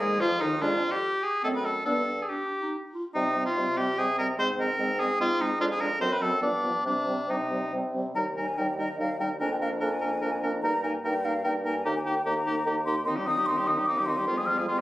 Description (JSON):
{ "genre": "quick classical-period movement for wind quintet", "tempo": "147 BPM", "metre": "3/4", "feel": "rubato", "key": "C minor, Eb major from 8.2 s", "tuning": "A4 = 435 Hz", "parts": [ { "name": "mellow hollow concert flute", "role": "melody", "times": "0.0-14.8 s", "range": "Eb4 to F6", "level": "-30 LUFS", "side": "left 1 dB", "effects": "none" }, { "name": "clear oboe", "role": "second line", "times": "0.0-14.8 s", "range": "D4 to C5", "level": "-28 LUFS", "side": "equal", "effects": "none" }, { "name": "warm French horn", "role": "accompaniment", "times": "0.0-14.8 s", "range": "Eb3 to B3", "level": "-36 LUFS", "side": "equal", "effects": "none" }, { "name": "warm clarinet", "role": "accompaniment", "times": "0.0-14.8 s", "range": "Eb3 to F4", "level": "-34 LUFS", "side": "right 2 dB", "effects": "none" }, { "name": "mellow bassoon", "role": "bass", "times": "0.0-14.8 s", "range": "Eb2 to C3", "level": "-32 LUFS", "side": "right 1 dB", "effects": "none" } ], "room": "moderate large studio reverb, RT60 0.8 s", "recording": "recorded on a phone in the room, club reverb, compression", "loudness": "-25 LUFS", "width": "side -16 dB against mid", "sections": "0.0-8.2 A section; 8.2-14.8 B section", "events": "none", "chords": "0.0 Ab5; 0.6 Ddim/F; 1.4 F#dim7; 1.9 G; 3.2 Cm; 4.4 Ab; 5.6 Ddim/F; 6.0 F#dim; 6.4 G7; 6.8 Cm; 8.2 Eb; 9.4 Bb7/F; 10.6 Eb/G; 11.8 Eb; 13.1 Cm/Eb; 14.3 Fm" }